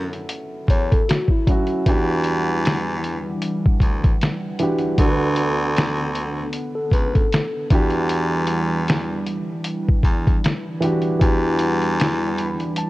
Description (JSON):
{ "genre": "lo-fi hip hop", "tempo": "77 BPM", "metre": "4/4", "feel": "swing 56% on 16ths", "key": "E minor", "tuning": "A4 = 440 Hz", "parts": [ { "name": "dark upright piano", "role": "accompaniment", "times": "0.0-12.9 s", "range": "D3 to B5", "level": "-24 LUFS", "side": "right 1 dB", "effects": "low-pass filter" }, { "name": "clear baritone saxophone", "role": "bass", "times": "0.0-12.7 s", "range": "C#2 to F#2", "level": "-24 LUFS", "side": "equal", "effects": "none" }, { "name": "lo-fi sampler-style drum kit", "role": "drums", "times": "0.1-12.9 s", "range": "hi-hat, kick drum, snare drum", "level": "-19 LUFS", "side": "equal", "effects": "none" }, { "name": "mellow tine electric piano", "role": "second line", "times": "0.7-1.8, 6.8-7.7 s", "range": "E4 to C#5", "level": "-27 LUFS", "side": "left 2 dB", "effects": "medium stereo tremolo, low-pass filter, analog delay" }, { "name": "hollow soft pad", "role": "sustained chords", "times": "1.9-12.9 s", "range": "E3 to F#5", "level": "-28 LUFS", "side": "right 1 dB", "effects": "chorus, low-pass filter" } ], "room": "light reverb", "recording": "cassette tape", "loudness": "-18 LUFS", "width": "side -18 dB against mid", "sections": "0.0-12.9 A section", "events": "upright piano fill 12.0-12.9", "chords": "0.0 F#m7; 1.9 Em9; 5.0 D6; 7.7 Em9" }